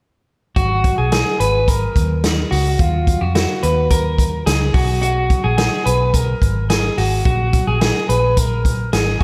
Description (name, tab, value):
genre	jangly indie pop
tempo	108 BPM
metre	4/4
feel	straight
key	G# dorian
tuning	A4 = 443 Hz
part	electric guitar through a small old amp	arpeggios	0.6-9.2 s	E#4 to B4	-22 LUFS	equal	spring reverb
part	vintage muted fingered electric bass	bass	0.6-9.2 s	G#1 to E#2	-21 LUFS	equal	none
part	vintage drum kit	drums	0.6-9.2 s	hi-hat, kick drum, snare drum	-21 LUFS	equal	none
room	moderate lush hall reverb, RT60 2.1 s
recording	big arena sound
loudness	-17 LUFS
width	mono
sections	0.6-9.2 A section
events	none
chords	0.6 G#m; 2.8 D#madd9; 4.7 B5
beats	| 0.56 1.12 1.68 2.24 | 2.79 3.35 3.91 4.46 | 5.02 5.58 6.14 6.70 | 7.25 7.81 8.37 8.93